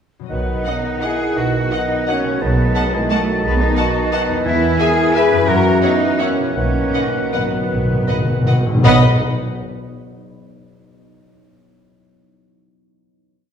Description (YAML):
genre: classical, orchestral ballroom waltz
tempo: 150-188 BPM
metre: 3/4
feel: rubato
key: B major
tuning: A4 = 440 Hz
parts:
  - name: concert harp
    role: arpeggios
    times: 0.2-9.0 s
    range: E2 to E5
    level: -27 LUFS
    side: left 3 dB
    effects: none
  - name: concert flute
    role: second line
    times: 0.3-9.0 s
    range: G#4 to B5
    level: -28 LUFS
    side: left 3 dB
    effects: none
  - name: warm clarinet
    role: second line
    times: 0.3-9.0 s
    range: F#4 to D#5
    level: -26 LUFS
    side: left 2 dB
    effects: none
  - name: warm oboe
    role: second line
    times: 0.3-9.0 s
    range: D#5 to A5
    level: -26 LUFS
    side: right 1 dB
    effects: none
  - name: mellow bassoon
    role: accompaniment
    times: 0.3-9.0 s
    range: D#3 to F#3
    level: -25 LUFS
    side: right 2 dB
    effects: none
  - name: clear French horn section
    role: sustained chords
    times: 0.3-9.0 s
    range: E3 to G#4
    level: -24 LUFS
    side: left 4 dB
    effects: none
  - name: rich studio cello section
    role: bass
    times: 0.3-9.0 s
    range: G#3 to B4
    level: -22 LUFS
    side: right 2 dB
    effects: none
  - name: rich studio double bass section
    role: bass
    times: 0.3-9.0 s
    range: B1 to F#2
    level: -21 LUFS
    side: right 3 dB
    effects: none
  - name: timpani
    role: percussion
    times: 0.3-0.8, 6.6-9.0 s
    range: B2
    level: -19 LUFS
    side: left 1 dB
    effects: none
  - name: rich studio violin section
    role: melody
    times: 0.7-9.0 s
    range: F#5 to A5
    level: -27 LUFS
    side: left 3 dB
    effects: none
  - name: rich studio violin section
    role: second line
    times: 0.7-9.0 s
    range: D#5 to F#5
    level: -29 LUFS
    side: left 3 dB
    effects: none
  - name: rich studio viola section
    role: accompaniment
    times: 0.7-9.0 s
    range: B4 to E5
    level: -28 LUFS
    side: left 2 dB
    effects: none
room: wet recital hall reverb, RT60 1.6 s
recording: heard from further back in the room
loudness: -14 LUFS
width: side -8 dB against mid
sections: 0.3-8.8 A section; 8.8-9.9 final chord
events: timpani fill 6.6-8.8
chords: 0.3 B; 2.4 B7; 4.5 E; 5.5 F#7; 6.6 B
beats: | 0.30 0.66 1.03 | 1.37 1.73 2.08 | 2.42 2.76 3.11 | 3.44 3.78 4.13 | 4.46 4.80 5.15 | 5.48 5.82 6.19 | 6.56 6.94 7.33 | 7.70 8.08 8.47 | 8.84